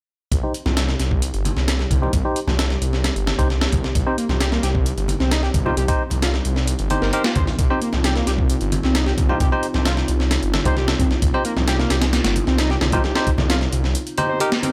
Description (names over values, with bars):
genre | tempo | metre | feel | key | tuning
breakbeat, breaks | 132 BPM | 4/4 | straight | C minor | A4 = 439 Hz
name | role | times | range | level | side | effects
dark analog pad | sustained chords | 0.3-14.7 s | C4 to G4 | -32 LUFS | equal | chorus, sidechain pumping
detuned saw bass | bass | 0.3-14.0 s | G1 to C2 | -24 LUFS | equal | tube saturation
breakbeat sampler-style drum kit | drums | 0.3-14.7 s | hi-hat, kick drum, snare drum | -24 LUFS | equal | studio reverb
barky tine electric piano | stabs | 0.4-14.5 s | Eb4 to C5 | -27 LUFS | equal | vintage 12-bit sampler grit, low-pass filter, delay
congas | percussion | 0.7-14.7 s | none | -32 LUFS | equal | none
overdriven synth lead | riff | 4.1-14.7 s | Bb3 to C5 | -29 LUFS | equal | distortion, tube saturation, cassette tape, delay
room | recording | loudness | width
digital ambience | none | -20 LUFS | mono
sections
0.3-14.7 A section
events
filter sweep on tine electric piano 0.3-14.7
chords
0.3 Cm